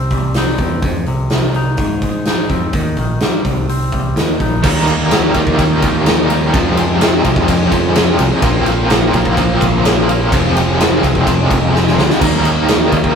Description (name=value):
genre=quiet-loud alternative rock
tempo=127 BPM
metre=4/4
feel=straight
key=F dorian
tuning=A4 = 440 Hz
part: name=twangy electric guitar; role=arpeggios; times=0.0-4.6 s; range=F2 to Eb4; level=-22 LUFS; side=left 4 dB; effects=none
part: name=modern bright picked electric bass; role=bass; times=0.0-13.2 s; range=F1 to Ab2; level=-18 LUFS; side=equal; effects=none
part: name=big rock drum kit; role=drums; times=0.1-13.1 s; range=crash cymbal, hi-hat, kick drum, ride cymbal, snare drum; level=-15 LUFS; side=equal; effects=none
part: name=string machine, violas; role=sustained chords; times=4.6-13.2 s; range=Eb4 to Bb5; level=-27 LUFS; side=right 1 dB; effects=none
part: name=overdriven semi-hollow guitar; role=riff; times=4.6-13.2 s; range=F2 to Eb4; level=-16 LUFS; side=equal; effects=tremolo
part: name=sludgy distorted guitar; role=riff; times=4.6-13.2 s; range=F2 to Eb4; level=-20 LUFS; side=equal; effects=overdrive
room=light reverb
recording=rough rehearsal-room recording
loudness=-11 LUFS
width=side -6 dB against mid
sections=0.0-4.6 A section; 4.6-13.2 B section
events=drum fill 11.7-12.2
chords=0.0 Cm; 0.8 F5; 1.8 Ab; 2.7 Eb; 3.5 C5; 4.2 Eb5; 4.6 Ebmaj7; 6.5 Fm7; 8.4 Bbsus2; 10.3 Fm7; 12.2 Ebmaj7